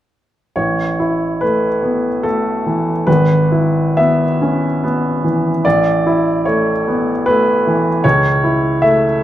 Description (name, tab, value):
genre	classical, romantic character piece for solo piano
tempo	64-78 BPM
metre	3/4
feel	rubato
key	A major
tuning	A4 = 441 Hz
part	clear baby grand piano	solo	0.6-9.2 s	G#1 to E5	-13 LUFS	equal	none
room	moderate recital hall reverb, RT60 1.7 s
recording	dark, warm production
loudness	-13 LUFS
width	side -12 dB against mid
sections	0.6-9.2 A section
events	none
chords	0.6 A; 3.1 E/G#; 5.6 A; 8.0 A/C#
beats	| 0.56 1.41 2.24 | 3.07 3.97 4.82 | 5.64 6.45 7.26 | 8.04 8.81